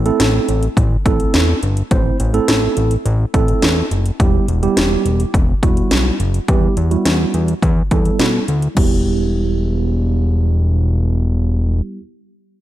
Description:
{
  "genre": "synth-pop",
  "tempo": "105 BPM",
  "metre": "4/4",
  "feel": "straight",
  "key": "E minor",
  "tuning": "A4 = 437 Hz",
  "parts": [
    { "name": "fat analog bass", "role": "bass", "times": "0.0-11.8 s", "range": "E1 to B2", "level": "-16 LUFS", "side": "equal", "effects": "none" },
    { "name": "mellow tine electric piano", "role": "accompaniment", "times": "0.1-12.0 s", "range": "G3 to C5", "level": "-20 LUFS", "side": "right 4 dB", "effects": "medium stereo tremolo, low-pass filter" },
    { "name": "house drum kit", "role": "drums", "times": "0.1-8.9 s", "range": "crash cymbal, hi-hat, kick drum, snare drum", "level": "-17 LUFS", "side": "equal", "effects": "overdrive, gated reverb" }
  ],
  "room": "light reverb",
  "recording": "none",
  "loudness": "-13 LUFS",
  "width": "side -14 dB against mid",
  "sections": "0.0-8.8 A section; 8.8-11.1 B section",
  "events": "filter sweep on tine electric piano 0.0-8.8",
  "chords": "0.0 Am; 4.2 Em"
}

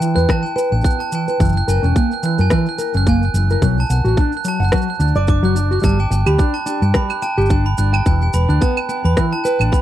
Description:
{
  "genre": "folktronica",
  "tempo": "108 BPM",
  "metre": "4/4",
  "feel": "swing 56% on 16ths",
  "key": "unclear",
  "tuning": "A4 = 442 Hz",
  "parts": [
    { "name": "glockenspiel with brass mallets", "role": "second line", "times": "0.0-9.8 s", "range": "G5 to F#6", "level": "-23 LUFS", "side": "right 4 dB", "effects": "tape echo" },
    { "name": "picked plugged-in steel-string acoustic guitar", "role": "arpeggios", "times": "0.0-9.8 s", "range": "E3 to G5", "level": "-20 LUFS", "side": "equal", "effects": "low-pass filter, tape echo" },
    { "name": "electronic shaker, rim click and claves", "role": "drums", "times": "0.0-9.8 s", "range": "none", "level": "-24 LUFS", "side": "equal", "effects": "overdrive" },
    { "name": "hollow-body short-scale fingered electric bass", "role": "bass", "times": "0.2-9.7 s", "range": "E1 to G2", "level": "-16 LUFS", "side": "equal", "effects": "none" },
    { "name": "electronic kick drum", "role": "drums", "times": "0.3-9.8 s", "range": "none", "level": "-17 LUFS", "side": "equal", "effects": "overdrive" }
  ],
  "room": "little or no reverb",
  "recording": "dry, close 1970s-style studio recording",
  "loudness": "-14 LUFS",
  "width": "side -12 dB against mid",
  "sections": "0.0-9.8 A section",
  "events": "filter sweep on steel-string acoustic guitar 0.0-9.8",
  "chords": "0.0 Em; 1.4 F#7; 3.6 Bm; 5.8 G5; 8.1 Em7"
}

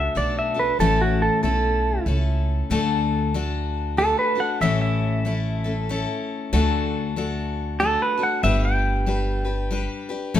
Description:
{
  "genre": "honky-tonk and classic country",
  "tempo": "94 BPM",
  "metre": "3/4",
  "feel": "swing 60% on 8ths",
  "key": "D major",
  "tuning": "A4 = 439 Hz",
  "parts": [
    { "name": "pedal steel guitar", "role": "melody", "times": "0.0-9.9 s", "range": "F#4 to G5", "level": "-22 LUFS", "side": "right 2 dB", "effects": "none" },
    { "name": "picked steel-string acoustic guitar", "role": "accompaniment", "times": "0.0-10.4 s", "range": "A2 to B4", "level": "-25 LUFS", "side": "left 5 dB", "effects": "none" },
    { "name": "upright bass", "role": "bass", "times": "0.0-10.4 s", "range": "G1 to D2", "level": "-24 LUFS", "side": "equal", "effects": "none" }
  ],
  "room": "light reverb",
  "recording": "minimal, uncompressed stereo recording",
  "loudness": "-20 LUFS",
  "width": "side -11 dB against mid",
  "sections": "0.0-10.4 A section",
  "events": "pedal steel guitar solo 0.0-10.4",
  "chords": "0.0 D; 0.8 A; 2.7 D; 4.6 A; 6.5 D; 8.4 G"
}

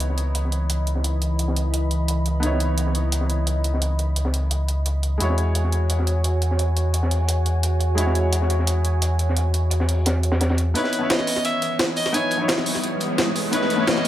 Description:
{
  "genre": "liquid drum and bass",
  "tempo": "173 BPM",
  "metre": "4/4",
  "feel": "straight",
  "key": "C# minor",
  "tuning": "A4 = 440 Hz",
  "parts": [
    { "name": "felt-muted upright piano", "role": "accompaniment", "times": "0.0-14.1 s", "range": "G#3 to C#5", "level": "-28 LUFS", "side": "left 1 dB", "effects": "digital delay" },
    { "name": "warm analog pad", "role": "sustained chords", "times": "0.0-14.1 s", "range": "E3 to D#6", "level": "-29 LUFS", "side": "right 1 dB", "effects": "wide subtle chorus" },
    { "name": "sub bass with octave", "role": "bass", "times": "0.0-10.7 s", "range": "C#2 to E2", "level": "-21 LUFS", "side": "equal", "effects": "none" },
    { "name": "crunchy breakbeat drum kit", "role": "drums", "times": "0.0-14.1 s", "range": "hi-hat, snare drum", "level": "-30 LUFS", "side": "equal", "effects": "high-pass filter on hats, low-pass filter on hats, high-pass filter on snare, low-pass filter on snare, high-pass filter on room, low-pass filter on room" },
    { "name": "jungle sampler-style drum kit", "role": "drums", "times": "0.0-14.1 s", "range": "hi-hat, snare drum", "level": "-26 LUFS", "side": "right 1 dB", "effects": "overdrive" },
    { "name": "edgy alto saxophone", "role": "melody", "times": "10.8-14.1 s", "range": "B4 to G#5", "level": "-26 LUFS", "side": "equal", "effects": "digital delay" },
    { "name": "riser", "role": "sound effects", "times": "11.6-14.1 s", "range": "none", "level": "-28 LUFS", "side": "equal", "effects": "none" }
  ],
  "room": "light reverb, small room ambience",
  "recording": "none",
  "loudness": "-19 LUFS",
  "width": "side -12 dB against mid",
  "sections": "0.0-10.8 A section; 10.8-14.1 B section",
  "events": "build-up 10.8-14.1; riser 11.6-14.1",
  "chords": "0.0 C#m9; 5.2 E69; 10.8 C#m9"
}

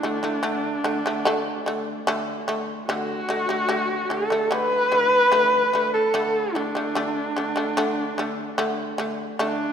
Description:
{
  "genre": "mongolian traditional",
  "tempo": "74 BPM",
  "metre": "4/4",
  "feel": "straight",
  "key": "D gong mode",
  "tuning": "A4 = 440 Hz",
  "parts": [
    { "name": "rich horsehead fiddle", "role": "melody", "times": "0.0-9.7 s", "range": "D4 to B4", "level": "-22 LUFS", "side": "equal", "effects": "none" },
    { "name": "shamisen", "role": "arpeggios", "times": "0.0-9.7 s", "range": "D3 to A3", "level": "-25 LUFS", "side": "equal", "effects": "none" }
  ],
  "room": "wet concert hall reverb, RT60 2.2 s",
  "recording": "none",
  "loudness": "-21 LUFS",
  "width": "side -8 dB against mid",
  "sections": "0.0-9.4 A section",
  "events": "none",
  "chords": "0.0 D5"
}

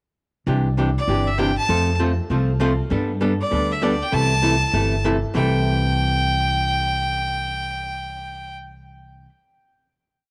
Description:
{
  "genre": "country, western swing",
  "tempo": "197 BPM",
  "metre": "4/4",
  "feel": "swing 63% on 8ths",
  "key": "C major",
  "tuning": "A4 = 439 Hz",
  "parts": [
    { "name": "archtop guitar, miked and amplified", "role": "accompaniment", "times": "0.5-9.3 s", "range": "C3 to A4", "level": "-26 LUFS", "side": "equal", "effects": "none" },
    { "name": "upright bass", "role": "bass", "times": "0.5-9.2 s", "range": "G1 to G2", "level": "-25 LUFS", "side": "equal", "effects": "none" },
    { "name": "clear fiddle", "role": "melody", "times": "1.0-8.5 s", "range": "D5 to A5", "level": "-25 LUFS", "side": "equal", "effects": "none" }
  ],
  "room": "light reverb, small room ambience",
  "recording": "none",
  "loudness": "-21 LUFS",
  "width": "mono",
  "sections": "0.5-5.3 A section; 5.3-7.8 final chord",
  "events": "none",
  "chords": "0.5 Cadd9; 1.7 F; 2.9 Gadd9; 4.1 C6"
}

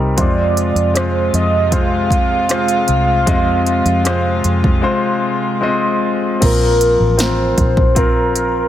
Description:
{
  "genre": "pop ballad",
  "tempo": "78 BPM",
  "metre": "4/4",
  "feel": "straight",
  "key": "unclear",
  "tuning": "A4 = 444 Hz",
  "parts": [
    { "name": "warm concert grand piano", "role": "accompaniment", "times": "0.0-8.7 s", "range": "C3 to Bb5", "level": "-18 LUFS", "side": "left 2 dB", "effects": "none" },
    { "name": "vintage muted fingered electric bass", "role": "bass", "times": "0.0-8.7 s", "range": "A1 to F2", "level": "-18 LUFS", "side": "equal", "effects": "none" },
    { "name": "warm velvety synth lead", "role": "melody", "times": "0.2-8.7 s", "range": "Bb4 to F5", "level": "-18 LUFS", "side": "right 1 dB", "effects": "chorus" },
    { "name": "dark studio string section", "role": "sustained chords", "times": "0.2-6.4 s", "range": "C3 to F4", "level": "-24 LUFS", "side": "equal", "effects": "none" },
    { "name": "deep house drum kit", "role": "drums", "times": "0.2-8.5 s", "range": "crash cymbal, hi-hat, kick drum, rim click, snare drum", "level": "-17 LUFS", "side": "equal", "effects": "none" }
  ],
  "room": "light reverb",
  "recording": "none",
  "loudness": "-12 LUFS",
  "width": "side -11 dB against mid",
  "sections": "0.0-6.4 A section; 6.4-8.7 B section",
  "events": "grand piano fill 0.0; break 4.8-6.4",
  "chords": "0.2 Fm; 6.4 Bbsus2"
}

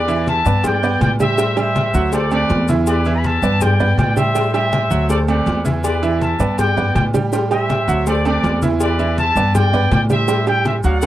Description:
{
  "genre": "latin, salsa",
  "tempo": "162 BPM",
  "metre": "4/4",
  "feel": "straight",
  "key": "unclear",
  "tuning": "A4 = 442 Hz",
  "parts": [
    { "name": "bright trumpet section", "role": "melody", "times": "0.0-11.1 s", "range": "A4 to B5", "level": "-20 LUFS", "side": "left 1 dB", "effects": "none" },
    { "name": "upright bass", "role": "bass", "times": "0.0-11.1 s", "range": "D2 to A2", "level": "-19 LUFS", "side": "left 1 dB", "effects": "none" },
    { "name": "bright concert grand piano", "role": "accompaniment", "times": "0.1-11.1 s", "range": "E3 to G5", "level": "-20 LUFS", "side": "right 5 dB", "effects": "none" },
    { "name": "agogo bells and timbales", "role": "percussion", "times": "0.1-11.1 s", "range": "none", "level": "-27 LUFS", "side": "right 3 dB", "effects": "none" },
    { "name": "congas", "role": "percussion", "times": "0.1-11.1 s", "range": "none", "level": "-24 LUFS", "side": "left 2 dB", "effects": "none" },
    { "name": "maracas", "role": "percussion", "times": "0.1-11.1 s", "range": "none", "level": "-35 LUFS", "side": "left 8 dB", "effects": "none" },
    { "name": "cowbell", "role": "percussion", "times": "0.3-11.1 s", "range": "none", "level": "-26 LUFS", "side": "left 5 dB", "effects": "none" }
  ],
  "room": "little or no reverb",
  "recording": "dry, close 1970s-style studio recording",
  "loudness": "-14 LUFS",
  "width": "side -13 dB against mid",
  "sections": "0.0-11.1 A section",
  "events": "none",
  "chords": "0.0 Em7; 0.6 Gadd9; 1.4 Am7; 2.1 D5; 2.9 Em7; 3.6 Gadd9; 4.4 Am7; 5.1 D5; 5.8 Em7; 6.6 Gadd9; 7.3 Am7; 8.1 D5; 8.8 Em7; 9.5 Gadd9; 10.3 Am7"
}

